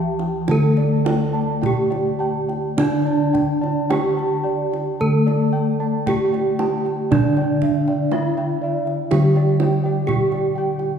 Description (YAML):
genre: Javanese gamelan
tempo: 52-64 BPM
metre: 4/4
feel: straight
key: unclear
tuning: A4 = 440 Hz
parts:
  - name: gamelan-type bronze metallophone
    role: melody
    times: 0.0-11.0 s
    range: D4 to A4+20c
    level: -22 LUFS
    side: right 2 dB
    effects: none
  - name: gamelan-type bronze metallophone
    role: accompaniment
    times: 0.0-11.0 s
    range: D3 to A3+20c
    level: -25 LUFS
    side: left 3 dB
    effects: none
  - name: gamelan-type bossed gongs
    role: arpeggios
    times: 0.0-10.8 s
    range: D5 to A5+20c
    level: -30 LUFS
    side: left 4 dB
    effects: none
  - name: gamelan-type bronze metallophone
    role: arpeggios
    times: 0.0-11.0 s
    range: D5 to A5+20c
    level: -29 LUFS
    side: right 4 dB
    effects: none
  - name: gamelan-type bossed gongs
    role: bass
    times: 0.0-11.0 s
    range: D2 to E4+40c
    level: -22 LUFS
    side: equal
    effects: none
  - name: kendang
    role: percussion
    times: 0.2-10.9 s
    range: none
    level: -27 LUFS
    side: right 4 dB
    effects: none
room: wet scoring stage reverb, RT60 1.9 s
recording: heard from further back in the room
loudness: -17 LUFS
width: side -8 dB against mid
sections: 0.0-11.0 A section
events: none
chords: none